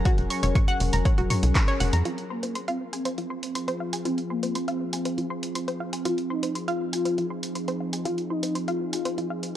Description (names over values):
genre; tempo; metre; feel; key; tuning
melodic techno; 120 BPM; 4/4; straight; F phrygian; A4 = 439 Hz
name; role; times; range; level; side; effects
evolving wavetable pad; sustained chords; 0.0-9.6 s; F3 to Bb4; -31 LUFS; equal; chorus, built-in reverb, sidechain pumping
analog pluck; arpeggios; 0.0-9.4 s; F4 to Db6; -32 LUFS; equal; chorus, sidechain pumping, analog delay
tight sequencer bass; bass; 0.0-2.0 s; F1 to F2; -23 LUFS; equal; sidechain pumping
electronic kick drum; drums; 0.1-1.7 s; none; -22 LUFS; equal; none
punchy analog drum machine; drums; 0.1-9.5 s; handclaps, hi-hat, toms; -32 LUFS; right 1 dB; sidechain pumping on hats, sidechain pumping on toms
expressive portamento lead; melody; 2.1-9.3 s; Bb3 to F4; -31 LUFS; left 2 dB; analog chorus, sidechain pumping, analog delay
room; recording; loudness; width
light reverb, digital ambience; dry, gritty hardware recording; -24 LUFS; side -11 dB against mid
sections
0.0-2.1 A section; 2.1-9.6 B section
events
band accent 1.6; filter sweep on synth arpeggio sound 2.1-9.6; filter sweep on analog synth lead 2.1-9.6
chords
0.0 Gb/F; 2.1 Fm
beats
| 0.05 0.55 1.05 1.55 | 2.05 2.55 3.05 3.55 | 4.05 4.55 5.05 5.55 | 6.05 6.55 7.05 7.55 | 8.05 8.55 9.05 9.55